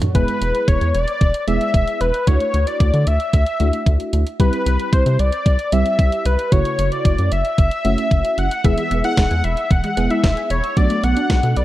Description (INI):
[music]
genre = synth-pop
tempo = 113 BPM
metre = 4/4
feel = straight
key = unclear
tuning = A4 = 440 Hz
[part]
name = clean 12-bit digital drum machine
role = drums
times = 0.0-11.6 s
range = hi-hat, kick drum, snare drum, toms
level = -17 LUFS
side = equal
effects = none
[part]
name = wide unison lead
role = melody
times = 0.1-11.6 s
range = B4 to F#5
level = -21 LUFS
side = left 2 dB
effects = none
[part]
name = FM electric piano with auto-pan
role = accompaniment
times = 0.1-11.6 s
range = C#3 to G#4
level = -24 LUFS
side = right 1 dB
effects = phaser
[part]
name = rubbery square bass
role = bass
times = 0.1-11.6 s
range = E1 to D3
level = -19 LUFS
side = equal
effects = none
[part]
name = resonant blip pluck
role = arpeggios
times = 8.6-11.6 s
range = E3 to E6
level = -24 LUFS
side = right 2 dB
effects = chorus
[sound]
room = light reverb, digital ambience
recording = dark, warm production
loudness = -15 LUFS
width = side -15 dB against mid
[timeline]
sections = 0.1-11.6 A section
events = none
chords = 0.1 E; 2.3 Dadd9; 4.4 C; 6.5 F#m7; 8.6 E; 10.8 Bm7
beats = | 0.15 0.68 1.21 1.74 | 2.27 2.80 3.33 3.87 | 4.40 4.93 5.46 5.99 | 6.52 7.05 7.58 8.11 | 8.64 9.18 9.71 10.24 | 10.77 11.30